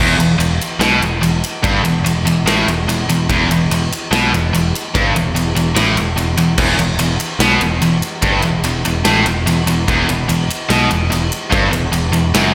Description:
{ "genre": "heavy metal", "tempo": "146 BPM", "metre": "4/4", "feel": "straight", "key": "E minor", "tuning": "A4 = 440 Hz", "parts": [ { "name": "high-gain distorted guitar", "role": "riff", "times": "0.0-12.5 s", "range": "E2 to B2", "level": "-18 LUFS", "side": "equal", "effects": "distortion, slapback echo" }, { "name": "modern bright picked electric bass", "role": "bass", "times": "0.0-12.5 s", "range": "E1 to B1", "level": "-22 LUFS", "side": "equal", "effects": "none" }, { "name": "big rock drum kit", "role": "drums", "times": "0.2-12.4 s", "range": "crash cymbal, kick drum, ride cymbal, snare drum", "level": "-21 LUFS", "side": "equal", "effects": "none" } ], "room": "moderate lush hall reverb, RT60 2.2 s", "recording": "big arena sound", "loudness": "-15 LUFS", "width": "mono", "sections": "0.0-12.5 A section", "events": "half time 0.0-12.5", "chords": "0.0 Em" }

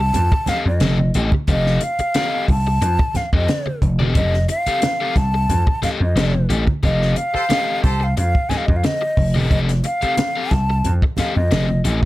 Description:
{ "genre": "funk", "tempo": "90 BPM", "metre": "4/4", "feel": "straight", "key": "F mixolydian", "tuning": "A4 = 440 Hz", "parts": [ { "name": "breathy hollow jazz flute", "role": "melody", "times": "0.0-11.8 s", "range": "Eb5 to A5", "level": "-22 LUFS", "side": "equal", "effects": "none" }, { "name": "crunchy overdriven guitar", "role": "accompaniment", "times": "0.0-12.1 s", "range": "C4 to F5", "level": "-25 LUFS", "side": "left 5 dB", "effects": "none" }, { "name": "vintage slap bass", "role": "bass", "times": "0.0-12.0 s", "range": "E1 to F2", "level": "-18 LUFS", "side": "equal", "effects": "none" }, { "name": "compact cocktail drum kit", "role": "drums", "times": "0.1-12.1 s", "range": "hi-hat, kick drum, snare drum", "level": "-21 LUFS", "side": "equal", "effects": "none" }, { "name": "congas", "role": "percussion", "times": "0.1-12.1 s", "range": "none", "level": "-26 LUFS", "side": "right 3 dB", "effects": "none" }, { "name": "clear horn section", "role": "second line", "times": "7.3-8.0 s", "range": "G4 to C5", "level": "-26 LUFS", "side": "right 1 dB", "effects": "none" } ], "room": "light reverb", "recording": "none", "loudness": "-16 LUFS", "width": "side -17 dB against mid", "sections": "0.0-12.1 A section", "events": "band accent 6.8-9.5", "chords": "0.0 F9" }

